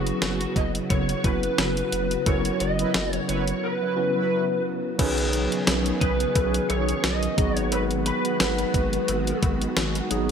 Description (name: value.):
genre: 1980s-style pop.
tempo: 88 BPM.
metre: 4/4.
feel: swing 55% on 16ths.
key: B major.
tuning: A4 = 440 Hz.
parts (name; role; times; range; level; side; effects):
lead guitar through a small cranked amp; melody; 0.0-9.4 s; F#4 to D#5; -28 LUFS; equal; overdrive, analog chorus, ping-pong delay.
tine electric piano; accompaniment; 0.0-10.3 s; F#3 to B4; -29 LUFS; equal; medium stereo tremolo.
soft string machine; sustained chords; 0.0-10.3 s; C#3 to F#4; -31 LUFS; equal; ensemble chorus.
saturated sub bass; bass; 0.0-10.3 s; F#1 to B1; -29 LUFS; equal; none.
clean 12-bit digital drum machine; drums; 0.1-10.3 s; crash cymbal, hi-hat, kick drum, snare drum, tambourine; -25 LUFS; equal; none.
cowbell; percussion; 0.2-9.9 s; none; -38 LUFS; left 6 dB; none.
analog synth brass; stabs; 2.8-10.3 s; D#3 to B4; -31 LUFS; right 2 dB; chorus.
room: moderate plate reverb, RT60 1.9 s.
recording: bright 1980s-style digital production.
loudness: -21 LUFS.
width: side -7 dB against mid.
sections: 0.0-5.0 A section; 5.0-10.3 B section.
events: band accent 2.3-5.0.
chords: 0.0 F#7sus4; 5.0 Badd9; 7.4 G#m7.